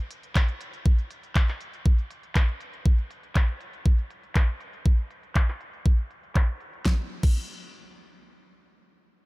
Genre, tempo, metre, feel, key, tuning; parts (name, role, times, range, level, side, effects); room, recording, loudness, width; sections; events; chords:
progressive house; 120 BPM; 4/4; straight
pop drum kit; drums; 0.1-7.4 s; crash cymbal, handclaps, hi-hat, snare drum; -35 LUFS; equal; sidechain pumping on hats, low-pass filter on hats, low-pass filter on snare, sidechain pumping on cymbals, low-pass filter on cymbals
electronic kick drum; drums; 0.4-7.4 s; -20 LUFS; equal
little or no reverb; -23 LUFS; side -24 dB against mid
0.0-6.9 A section; 6.9-9.3 B section
filter sweep on drum 0.0-6.9